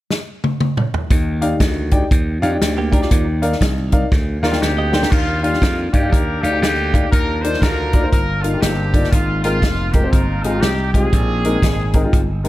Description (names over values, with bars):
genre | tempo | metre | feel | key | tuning
uptempo gospel | 120 BPM | 4/4 | swing 63% on 8ths | Eb major | A4 = 440 Hz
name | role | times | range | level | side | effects
natural country drum kit | drums | 0.1-12.5 s | crash cymbal, hi-hat, kick drum, snare drum, toms | -17 LUFS | equal | none
warm grand piano | accompaniment | 1.1-12.5 s | Ab2 to G5 | -22 LUFS | left 2 dB | none
slap bass | bass | 1.1-12.5 s | F1 to G2 | -20 LUFS | equal | none
semi-hollow electric guitar | second line | 2.8-5.3 s | Bb3 to Eb5 | -26 LUFS | right 5 dB | none
clear horn section | melody | 4.4-12.5 s | Bb3 to C5 | -22 LUFS | equal | none
room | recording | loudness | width
little or no reverb | none | -14 LUFS | side -16 dB against mid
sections
0.0-1.1 A section; 1.1-5.1 B section; 5.1-12.5 C section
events
drum fill 0.1-1.1, 4.1-5.1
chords
0.0 N.C.; 1.1 Ebmaj9; 3.1 Cm11; 5.1 Ebmaj9; 7.1 Cm11; 9.1 Ab69; 11.1 Bb9sus4